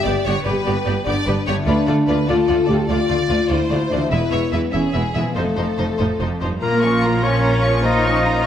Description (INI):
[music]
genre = cinematic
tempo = 98 BPM (dotted quarters)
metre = 12/8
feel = straight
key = unclear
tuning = A4 = 440 Hz
[part]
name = warm symphonic violin section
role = second line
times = 0.0-8.5 s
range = Db4 to D5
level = -26 LUFS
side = left 2 dB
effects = none
[part]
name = dark French horn section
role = sustained chords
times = 0.0-8.5 s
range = F3 to G4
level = -22 LUFS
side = left 2 dB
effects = none
[part]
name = concert harp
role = arpeggios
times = 0.0-8.5 s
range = G2 to G#4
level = -27 LUFS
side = left 6 dB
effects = none
[part]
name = warm symphonic violin section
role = melody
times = 0.1-8.4 s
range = C5 to Db6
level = -28 LUFS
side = left 3 dB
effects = none
[part]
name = rich symphonic viola section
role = accompaniment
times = 0.1-8.4 s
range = F3 to G4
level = -28 LUFS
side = right 1 dB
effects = none
[part]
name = rich symphonic cello section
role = bass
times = 0.1-8.5 s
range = D2 to Eb4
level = -24 LUFS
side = right 2 dB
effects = none
[part]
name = rich symphonic double bass section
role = bass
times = 0.1-8.5 s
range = E1 to D2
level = -23 LUFS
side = right 2 dB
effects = none
[part]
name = clear clarinet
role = second line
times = 6.6-8.5 s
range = Bb4 to Eb5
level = -21 LUFS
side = equal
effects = none
[part]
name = mellow hollow silver concert flute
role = second line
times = 6.6-8.5 s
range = F4 to C5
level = -26 LUFS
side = left 2 dB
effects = none
[part]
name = clear trumpet section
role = stabs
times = 6.6-8.5 s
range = F4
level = -25 LUFS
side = left 1 dB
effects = none
[sound]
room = moderate scoring stage reverb, RT60 1.6 s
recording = none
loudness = -16 LUFS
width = side -9 dB against mid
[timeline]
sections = 0.0-6.6 A section; 6.6-8.5 B section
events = none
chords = 0.0 G; 1.7 Dm; 4.1 E; 5.4 F7; 6.6 Bbm